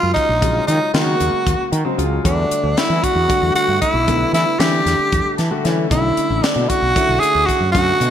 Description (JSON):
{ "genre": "electric jazz fusion", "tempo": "229 BPM (eighths)", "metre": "7/8", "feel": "straight", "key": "unclear", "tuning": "A4 = 440 Hz", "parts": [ { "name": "growling tenor saxophone", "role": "melody", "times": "0.0-8.1 s", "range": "D4 to Ab4", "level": "-17 LUFS", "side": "right 1 dB", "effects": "none" }, { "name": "warm concert grand piano", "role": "accompaniment", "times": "0.0-8.1 s", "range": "Db3 to Bb5", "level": "-23 LUFS", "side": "left 3 dB", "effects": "wide subtle chorus" }, { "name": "fretless electric bass", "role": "bass", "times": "0.0-8.1 s", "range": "A1 to E3", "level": "-20 LUFS", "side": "equal", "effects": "none" }, { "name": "tight funk drum kit", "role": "drums", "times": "0.2-8.1 s", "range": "hi-hat, kick drum, snare drum", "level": "-22 LUFS", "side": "equal", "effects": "gated reverb" } ], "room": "moderate lush hall reverb, RT60 1.7 s, small room ambience", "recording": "bright 1980s-style digital production", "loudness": "-14 LUFS", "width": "side -9 dB against mid", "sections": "0.0-8.1 A section", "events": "grand piano fill 1.5-2.2, 5.1-5.9", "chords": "0.0 Ebm11; 2.2 Em11; 5.9 Bm11", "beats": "0.16 | 0.42 0.68 0.94 1.20 1.46 1.72 1.99 | 2.25 2.51 2.77 3.03 3.29 3.55 3.82 | 4.08 4.34 4.60 4.86 5.12 5.39 5.65 | 5.91 6.17 6.43 6.70 6.96 7.22 7.48 | 7.74 8.01" }